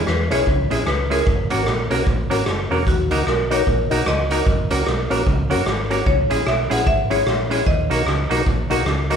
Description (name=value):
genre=ska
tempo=150 BPM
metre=4/4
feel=swing 61% on 8ths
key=C# dorian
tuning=A4 = 440 Hz
part: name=marimba with medium hard mallets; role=melody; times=0.0-9.1 s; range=F#4 to F#5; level=-24 LUFS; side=left 1 dB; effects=tape echo
part: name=semi-hollow electric guitar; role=accompaniment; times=0.0-9.2 s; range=F#3 to A#4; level=-25 LUFS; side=right 4 dB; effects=none
part: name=percussive tonewheel organ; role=stabs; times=0.0-9.2 s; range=C#4 to A#4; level=-25 LUFS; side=left 2 dB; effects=chorus vibrato, slow rotary speaker
part: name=hollow-body short-scale fingered electric bass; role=bass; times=0.0-9.2 s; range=E1 to E2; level=-23 LUFS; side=equal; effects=none
part: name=raw garage drum kit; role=drums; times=0.1-9.2 s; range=hi-hat, kick drum, rim click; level=-22 LUFS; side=equal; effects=none
room=moderate large studio reverb, RT60 1.0 s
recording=band playing live in one room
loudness=-17 LUFS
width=side -7 dB against mid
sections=0.0-9.2 A section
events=none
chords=0.0 C#m; 1.3 F#; 2.9 D#m; 4.5 F#; 6.1 C#m; 7.7 D#m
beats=0.07 0.47 0.87 | 1.27 1.67 2.07 2.47 | 2.87 3.27 3.67 4.07 | 4.47 4.87 5.27 5.67 | 6.07 6.46 6.86 7.26 | 7.66 8.06 8.46 8.86